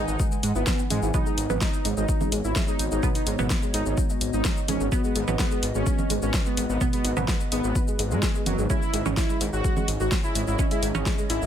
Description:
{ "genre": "melodic techno", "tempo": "127 BPM", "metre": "4/4", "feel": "straight", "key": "unclear", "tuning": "A4 = 441 Hz", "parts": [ { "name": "wide unison lead", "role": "melody", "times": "0.0-11.5 s", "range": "F#3 to F#4", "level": "-30 LUFS", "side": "equal", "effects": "wide subtle chorus, ping-pong delay" }, { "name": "dark analog pad", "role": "sustained chords", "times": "0.0-11.5 s", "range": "E3 to G#5", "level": "-34 LUFS", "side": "left 1 dB", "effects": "chorus, phaser, sidechain pumping" }, { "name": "filtered dub chord stab", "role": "stabs", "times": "0.0-11.5 s", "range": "B2 to E4", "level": "-33 LUFS", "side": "right 5 dB", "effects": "phaser, wide subtle chorus, cassette tape, sidechain pumping, ping-pong delay" }, { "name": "dark detuned saw bass", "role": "bass", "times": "0.0-11.5 s", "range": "F#1 to G#2", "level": "-28 LUFS", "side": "equal", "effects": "sidechain pumping" }, { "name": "deep house drum kit", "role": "drums", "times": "0.1-11.5 s", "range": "congas, hi-hat, shaker, snare drum", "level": "-30 LUFS", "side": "right 1 dB", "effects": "small room ambience" }, { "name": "woody wave-folded pluck", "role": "arpeggios", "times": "0.2-11.5 s", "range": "G#3 to E5", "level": "-33 LUFS", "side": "right 2 dB", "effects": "ensemble chorus, sidechain pumping, ping-pong delay" }, { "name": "electronic kick drum", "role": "drums", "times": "0.2-11.2 s", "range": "none", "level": "-26 LUFS", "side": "equal", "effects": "small room ambience" } ], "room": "digital ambience", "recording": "none", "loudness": "-22 LUFS", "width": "side -9 dB against mid", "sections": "0.0-11.5 A section", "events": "none", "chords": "0.0 Emaj7/G#; 1.1 B/G#; 8.7 C#m/G#" }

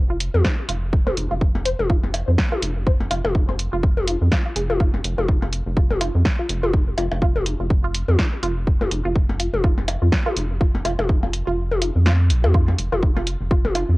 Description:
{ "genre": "minimal techno", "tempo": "124 BPM", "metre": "4/4", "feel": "swing 57% on 16ths", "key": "unclear", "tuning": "A4 = 440 Hz", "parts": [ { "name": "rubbery square bass", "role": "bass", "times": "0.0-14.0 s", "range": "F1 to F2", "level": "-22 LUFS", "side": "equal", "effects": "sidechain pumping" }, { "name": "resonant blip pluck", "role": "riff", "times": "0.1-13.8 s", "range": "F4 to C5", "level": "-28 LUFS", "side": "equal", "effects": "phaser, sidechain pumping, cassette tape, tape echo" }, { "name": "punchy analog drum machine", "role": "drums", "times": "0.2-13.9 s", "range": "hi-hat, snare drum", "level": "-26 LUFS", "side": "equal", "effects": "cassette tape" }, { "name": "electronic toms and percussion blips", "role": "percussion", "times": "0.3-13.9 s", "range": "none", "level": "-26 LUFS", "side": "left 2 dB", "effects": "cassette tape, analog delay" }, { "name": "electronic kick drum", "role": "drums", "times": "0.4-13.6 s", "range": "none", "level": "-19 LUFS", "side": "equal", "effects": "cassette tape" } ], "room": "digital ambience", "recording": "home recording on cassette", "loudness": "-18 LUFS", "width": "side -21 dB against mid", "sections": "0.0-14.0 A section", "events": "filter sweep on synth arpeggio sound 0.0-14.0; kick drops out 11.6-12.5", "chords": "none" }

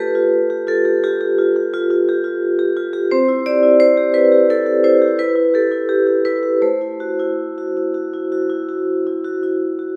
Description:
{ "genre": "classical, contemporary piece for solo vibraphone", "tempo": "80-88 BPM", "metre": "5/4", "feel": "straight", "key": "A minor", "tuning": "A4 = 442 Hz", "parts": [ { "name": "vibraphone with medium hard mallets", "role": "solo", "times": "0.0-10.0 s", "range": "A3 to D5", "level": "-17 LUFS", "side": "equal", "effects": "none" } ], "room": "moderate concert hall reverb, RT60 1.9 s", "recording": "none", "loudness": "-17 LUFS", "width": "mono", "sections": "0.0-10.0 A section", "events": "none", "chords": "0.0 G9/A; 3.1 C; 5.2 Em; 6.6 Am6" }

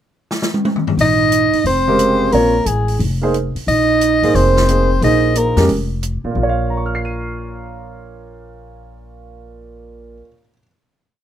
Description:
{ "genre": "modal jazz", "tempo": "179 BPM", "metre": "4/4", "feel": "swing 64% on 8ths", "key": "Bb minor", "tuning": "A4 = 440 Hz", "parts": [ { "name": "open jazz drum kit", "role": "drums", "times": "0.3-6.1 s", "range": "hi-hat, snare drum, toms", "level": "-22 LUFS", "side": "left 1 dB", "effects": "none" }, { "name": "breathy soprano saxophone", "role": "melody", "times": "1.0-5.7 s", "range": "Ab4 to Eb5", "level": "-16 LUFS", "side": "left 3 dB", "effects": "none" }, { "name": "mellow trombone", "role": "second line", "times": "1.0-5.7 s", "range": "Ab3 to Eb4", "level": "-19 LUFS", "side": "right 7 dB", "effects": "none" }, { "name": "upright bass", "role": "bass", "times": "1.0-10.2 s", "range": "F1 to F2", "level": "-19 LUFS", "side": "left 1 dB", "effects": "none" }, { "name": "warm grand piano", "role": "accompaniment", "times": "1.9-10.7 s", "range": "Bb2 to Eb7", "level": "-20 LUFS", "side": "right 3 dB", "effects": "none" } ], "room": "light reverb", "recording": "none", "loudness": "-13 LUFS", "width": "side -10 dB against mid", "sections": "0.0-1.0 pickup bar; 1.0-6.4 A section; 6.4-9.0 final chord", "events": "drum fill 0.3-1.0", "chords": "0.0 N.C.; 1.0 Bb9sus4; 6.4 Bbm" }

